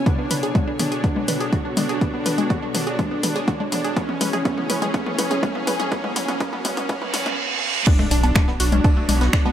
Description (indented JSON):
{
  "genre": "melodic techno",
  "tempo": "123 BPM",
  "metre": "4/4",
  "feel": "straight",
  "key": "B dorian",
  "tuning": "A4 = 440 Hz",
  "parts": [
    { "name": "dark analog pad", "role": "sustained chords", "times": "0.0-7.4 s", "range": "B2 to C#5", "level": "-32 LUFS", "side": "equal", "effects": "chorus, sidechain pumping" },
    { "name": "riser, reverse cymbal and impact", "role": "sound effects", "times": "0.0-9.5 s", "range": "none", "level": "-29 LUFS", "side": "right 2 dB", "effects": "none" },
    { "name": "warm symphonic string section", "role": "texture", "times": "0.0-9.5 s", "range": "B3 to G#5", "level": "-32 LUFS", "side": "right 1 dB", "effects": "sidechain pumping" },
    { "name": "soft supersaw", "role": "melody", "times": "0.1-9.5 s", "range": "C#4 to D4", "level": "-27 LUFS", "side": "equal", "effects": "sidechain pumping, dub echo" },
    { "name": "wide unison pluck", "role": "arpeggios", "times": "0.1-9.5 s", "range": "A3 to B4", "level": "-28 LUFS", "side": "right 1 dB", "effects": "sidechain pumping, dub echo" },
    { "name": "electronic kick drum", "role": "drums", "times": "0.1-9.4 s", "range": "none", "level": "-20 LUFS", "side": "equal", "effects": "overdrive, small room ambience" },
    { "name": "punchy analog drum machine", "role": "drums", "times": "0.1-9.5 s", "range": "congas, crash cymbal, finger snaps, hi-hat, toms, woodblock", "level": "-25 LUFS", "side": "left 2 dB", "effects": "overdrive, small room ambience" },
    { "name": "vintage brush drum kit", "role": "drums", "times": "7.9-9.5 s", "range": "ride cymbal, snare drum", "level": "-35 LUFS", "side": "right 1 dB", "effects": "sidechain pumping on cymbals, high-pass filter on cymbals, small room ambience, high-pass filter on snare, high-pass filter on room" },
    { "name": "gritty driven synth bass", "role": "bass", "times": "8.1-9.3 s", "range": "B1", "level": "-18 LUFS", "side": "equal", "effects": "sidechain pumping" }
  ],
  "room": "light reverb, digital ambience",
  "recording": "high-pass filter",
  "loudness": "-19 LUFS",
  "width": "side -10 dB against mid",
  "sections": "0.0-7.9 A section; 7.9-9.5 B section",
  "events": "build-up 0.0-7.9; drum fill 0.0-7.4; riser 0.0-7.4; filter sweep 0.0-7.9; reverse cymbal 6.9-7.9; drop 7.9-9.5; impact 7.9-9.5",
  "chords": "0.1 Bm7; 4.0 C#m7; 7.9 Bm",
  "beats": "| 0.06 0.55 1.04 1.53 | 2.01 2.50 2.99 3.48 | 3.97 4.45 4.94 5.43 | 5.92 6.41 6.89 7.38 | 7.87 8.36 8.84 9.33"
}